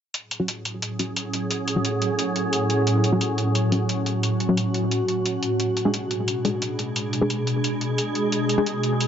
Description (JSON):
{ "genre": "dark technical drum and bass", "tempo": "176 BPM", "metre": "4/4", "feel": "straight", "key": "F# minor", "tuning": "A4 = 440 Hz", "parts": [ { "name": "swarming drone", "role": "sustained chords", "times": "0.7-9.1 s", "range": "A2 to G#4", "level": "-23 LUFS", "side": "right 1 dB", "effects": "built-in reverb" }, { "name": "electronic hi-hat", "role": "drums", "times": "0.1-9.1 s", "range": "none", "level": "-29 LUFS", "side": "left 1 dB", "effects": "none" }, { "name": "filtered dub chord stab", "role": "stabs", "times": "0.4-8.7 s", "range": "F#3 to G#4", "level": "-26 LUFS", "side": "left 1 dB", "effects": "chorus, dub echo" } ], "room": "moderate lush hall reverb, RT60 2.1 s", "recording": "nothing above 7.7 kHz", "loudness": "-21 LUFS", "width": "side -8 dB against mid", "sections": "0.1-9.1 A section", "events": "filter sweep on synth stab 0.1-9.1", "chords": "0.1 F#madd9; 5.6 G#dim" }